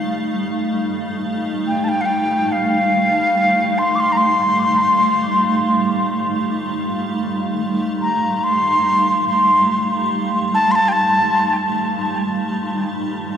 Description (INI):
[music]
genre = ambient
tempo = 71 BPM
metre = 4/4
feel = straight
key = F mixolydian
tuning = A4 = 439 Hz
[part]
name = granular cloud pad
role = sustained chords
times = 0.0-13.4 s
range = G3 to F5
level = -20 LUFS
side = right 1 dB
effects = built-in reverb
[part]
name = wooden flute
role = melody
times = 1.7-12.2 s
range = F5 to D6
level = -17 LUFS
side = equal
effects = dub echo
[sound]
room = wet plate reverb, RT60 3.3 s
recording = dreamy mix soaked in reverb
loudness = -15 LUFS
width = side -8 dB against mid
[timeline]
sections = 0.8-13.4 A section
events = none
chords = 0.0 F9